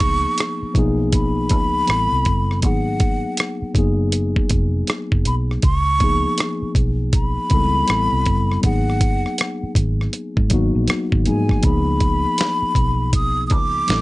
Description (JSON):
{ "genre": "R&B, neo-soul", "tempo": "80 BPM", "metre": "4/4", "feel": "swing 61% on 16ths", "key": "unclear", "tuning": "A4 = 440 Hz", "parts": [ { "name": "breathy concert flute", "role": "melody", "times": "0.0-14.0 s", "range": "F#5 to D#6", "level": "-22 LUFS", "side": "equal", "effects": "slapback echo" }, { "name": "mellow tine electric piano", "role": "accompaniment", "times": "0.0-14.0 s", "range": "E#3 to A4", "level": "-23 LUFS", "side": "left 2 dB", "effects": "none" }, { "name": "vintage muted fingered electric bass", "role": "bass", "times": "0.0-14.0 s", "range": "E#1 to G#2", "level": "-21 LUFS", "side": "equal", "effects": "none" }, { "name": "dusty soul sampler-style drum kit", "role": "drums", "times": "0.0-14.0 s", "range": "hi-hat, kick drum, rim click, snare drum", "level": "-19 LUFS", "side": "equal", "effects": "none" } ], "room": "light reverb", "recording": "nothing above 10.7 kHz", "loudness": "-16 LUFS", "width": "side -19 dB against mid", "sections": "0.0-14.0 A section", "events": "none", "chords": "0.0 C#13; 1.9 Am9; 2.6 G#m9; 5.6 C#13; 7.9 Am9; 8.6 G#m9; 11.6 C#13", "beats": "0.38 1.13 1.88 | 2.63 3.38 4.13 4.88 | 5.63 6.38 7.13 7.88 | 8.63 9.38 10.13 10.88 | 11.63 12.38 13.13 13.88" }